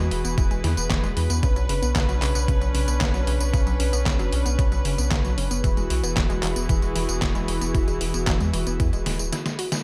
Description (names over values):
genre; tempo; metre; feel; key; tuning
italo disco; 114 BPM; 4/4; straight; E mixolydian; A4 = 438 Hz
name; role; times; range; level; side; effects
warm chamber string section; sustained chords; 0.0-9.8 s; E3 to B4; -31 LUFS; equal; none
unison pluck; arpeggios; 0.0-9.8 s; C#3 to F#4; -34 LUFS; equal; delay
round analog bass; bass; 0.0-9.3 s; D1 to E2; -27 LUFS; equal; none
detuned 8-bit digital drum machine; drums; 0.1-9.8 s; handclaps, hi-hat, snare drum, tambourine; -31 LUFS; equal; overdrive, gated reverb
electronic kick drum; drums; 0.4-8.9 s; none; -26 LUFS; equal; overdrive
room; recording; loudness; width
little or no reverb; none; -23 LUFS; mono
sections
0.0-9.8 A section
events
break 9.3-9.8; drum fill 9.3-9.8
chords
0.0 Eadd9; 1.4 Bmadd9; 5.6 Eadd9